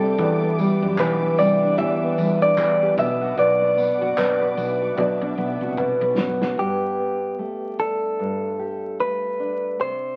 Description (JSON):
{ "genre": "acoustic pop", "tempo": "75 BPM", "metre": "4/4", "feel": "swing 60% on 16ths", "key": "G major", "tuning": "A4 = 441 Hz", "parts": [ { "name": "direct-recorded clean electric guitar", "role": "melody", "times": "0.0-10.2 s", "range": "G4 to E5", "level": "-24 LUFS", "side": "equal", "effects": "none" }, { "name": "felt-muted upright piano", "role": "accompaniment", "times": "0.0-6.6 s", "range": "B3 to D5", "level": "-33 LUFS", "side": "equal", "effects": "none" }, { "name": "nylon-string guitar", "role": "accompaniment", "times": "0.0-10.2 s", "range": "G2 to B4", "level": "-26 LUFS", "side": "equal", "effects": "none" }, { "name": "muted studio string section", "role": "sustained chords", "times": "0.0-6.6 s", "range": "C4 to D6", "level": "-36 LUFS", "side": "equal", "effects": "none" }, { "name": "fingerpicked steel-string acoustic guitar", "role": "arpeggios", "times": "0.0-7.2 s", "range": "F#3 to G4", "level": "-36 LUFS", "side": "equal", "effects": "none" }, { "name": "woody fretless electric bass", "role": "bass", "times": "0.2-6.5 s", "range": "F#1 to B2", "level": "-33 LUFS", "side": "equal", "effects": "none" }, { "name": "loose indie drum kit", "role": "drums", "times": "0.2-6.6 s", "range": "handclaps, kick drum, snare drum, tambourine", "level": "-33 LUFS", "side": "equal", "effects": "none" } ], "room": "moderate studio reverb, RT60 0.8 s", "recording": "very old 78 rpm record, vinyl crackle", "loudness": "-22 LUFS", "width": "mono", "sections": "0.0-6.6 A section; 6.6-10.2 B section", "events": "drum fill 5.0-6.6", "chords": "0.2 Em7; 3.0 Bm; 6.6 Gadd9", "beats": "| 0.18 0.98 1.78 2.58 | 3.38 4.18 4.98 5.78 | 6.58 7.38 8.19 8.99 | 9.80" }